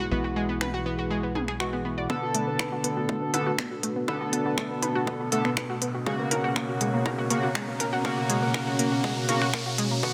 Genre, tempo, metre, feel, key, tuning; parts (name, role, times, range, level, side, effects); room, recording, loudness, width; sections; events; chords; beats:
melodic techno; 121 BPM; 4/4; straight; B dorian; A4 = 440 Hz
dark analog pad; sustained chords; 0.0-10.1 s; B2 to C#5; -37 LUFS; equal; chorus, phaser, sidechain pumping
analog pluck; arpeggios; 0.0-10.1 s; G#3 to D5; -34 LUFS; equal; chorus, cassette tape, sidechain pumping, digital delay
tight sequencer bass; bass; 0.0-2.1 s; B1; -38 LUFS; equal; sidechain pumping
analog drone; drone; 0.0-10.1 s; B2; -40 LUFS; equal
warbly tape-like pad; texture; 0.0-10.1 s; B2 to B5; -40 LUFS; equal
sync-sweep polysynth; stabs; 0.1-10.1 s; C#3 to A4; -32 LUFS; equal; chorus, sidechain pumping, digital delay
techno drum kit; drums; 0.6-9.9 s; finger snaps, hi-hat, toms; -33 LUFS; equal; high-pass filter on snare, sidechain pumping on toms, high-pass filter on toms, sidechain pumping on hats, high-pass filter on hats, high-pass filter on room
electronic kick drum; drums; 2.1-10.1 s; -37 LUFS; equal; high-pass filter on kick, high-pass filter on room
riser; sound effects; 4.3-10.1 s; -39 LUFS; equal
moderate concert hall reverb, RT60 1.9 s, digital ambience; -27 LUFS; mono
0.0-2.1 A section; 2.1-10.1 B section
filter sweep on drum 0.0-2.1; build-up 2.1-10.1; filter sweep on synth pluck 2.1-10.1; riser 4.3-10.1
0.0 Eadd9/B; 2.1 Bm7; 6.1 F#/B
| 0.11 0.61 1.11 1.60 | 2.10 2.59 3.09 3.58 | 4.08 4.58 5.07 5.57 | 6.07 6.56 7.06 7.55 | 8.05 8.54 9.04 9.54 | 10.03